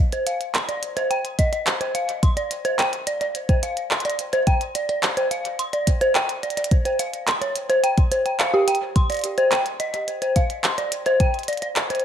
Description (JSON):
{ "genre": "IDM", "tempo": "107 BPM", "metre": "4/4", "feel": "straight", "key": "C minor", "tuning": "A4 = 440 Hz", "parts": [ { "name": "dark detuned synth bell", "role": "arpeggios", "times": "0.1-12.0 s", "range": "G4 to C6", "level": "-22 LUFS", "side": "equal", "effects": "chorus, digital delay" }, { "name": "glitchy drum kit", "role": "drums", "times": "0.1-12.0 s", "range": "handclaps, hi-hat", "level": "-25 LUFS", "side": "right 1 dB", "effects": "none" }, { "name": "electronic kick drum", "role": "drums", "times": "1.4-11.3 s", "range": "none", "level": "-18 LUFS", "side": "equal", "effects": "none" } ], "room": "moderate echo chamber reverb, RT60 1.3 s, digital ambience", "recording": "none", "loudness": "-19 LUFS", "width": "side -9 dB against mid", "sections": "0.0-12.0 A section", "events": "none", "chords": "none", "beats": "0.55 1.11 1.67 | 2.23 2.79 3.35 3.91 | 4.47 5.03 5.59 6.15 | 6.71 7.28 7.84 8.40 | 8.96 9.52 10.08 10.64 | 11.20 11.76" }